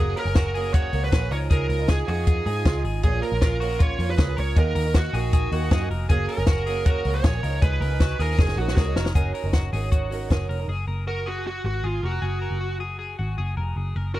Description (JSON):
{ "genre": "jangly indie pop", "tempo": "157 BPM", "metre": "4/4", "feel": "straight", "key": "F# major", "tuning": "A4 = 441 Hz", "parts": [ { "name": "smooth overdriven lead guitar", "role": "melody", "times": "0.0-14.2 s", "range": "E#4 to C#5", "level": "-29 LUFS", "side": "right 3 dB", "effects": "tape echo" }, { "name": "fingerpicked twelve-string acoustic guitar", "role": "accompaniment", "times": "0.0-10.7 s", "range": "A#2 to A#4", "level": "-32 LUFS", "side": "right 8 dB", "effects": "none" }, { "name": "twelve-string electric guitar", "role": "arpeggios", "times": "0.0-14.2 s", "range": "E#4 to A#4", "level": "-33 LUFS", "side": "left 5 dB", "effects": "spring reverb" }, { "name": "vintage muted picked electric bass", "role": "bass", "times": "0.0-14.2 s", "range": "E#1 to G#2", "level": "-26 LUFS", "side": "equal", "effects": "none" }, { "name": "compact cocktail drum kit", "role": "drums", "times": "0.2-10.6 s", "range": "hi-hat, kick drum, ride cymbal, snare drum", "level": "-20 LUFS", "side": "equal", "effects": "none" } ], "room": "small room ambience", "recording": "dry, close 1970s-style studio recording", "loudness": "-21 LUFS", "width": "side -15 dB against mid", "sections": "0.0-9.2 A section; 9.2-10.7 B section; 10.7-14.2 C section", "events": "drum fill 8.4-9.2", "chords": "0.0 F#add9; 1.3 C#add9; 3.0 A#m; 4.6 D#m; 6.1 F#add9; 7.4 C#add9; 8.4 F#6; 10.7 F#add9", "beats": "0.36 0.74 1.13 | 1.51 1.89 2.27 2.66 | 3.04 3.42 3.80 4.18 | 4.57 4.95 5.33 5.71 | 6.09 6.47 6.86 7.24 | 7.62 8.00 8.38 8.77 | 9.15 9.53 9.92 10.30 | 10.69 11.07 11.45 11.84 | 12.22 12.61 12.99 13.38 | 13.76 14.15" }